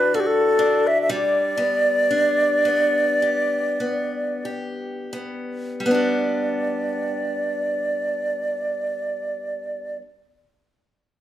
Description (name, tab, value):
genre	celtic folk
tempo	42-65 BPM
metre	4/4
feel	rubato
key	G major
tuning	A4 = 441 Hz
part	bright wooden flute	melody	0.0-10.0 s	G4 to E5	-20 LUFS	equal	none
part	picked acoustic archtop guitar	accompaniment	0.0-10.1 s	D2 to G4	-25 LUFS	left 1 dB	none
room	light reverb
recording	band playing live in one room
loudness	-20 LUFS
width	side -12 dB against mid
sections	0.0-5.8 A section; 5.8-11.2 B section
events	slowing down 0.0-5.8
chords	0.0 Dadd9; 1.1 G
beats	0.12 | 1.07 2.09 3.21 4.47 | 5.85 7.24 8.58 9.92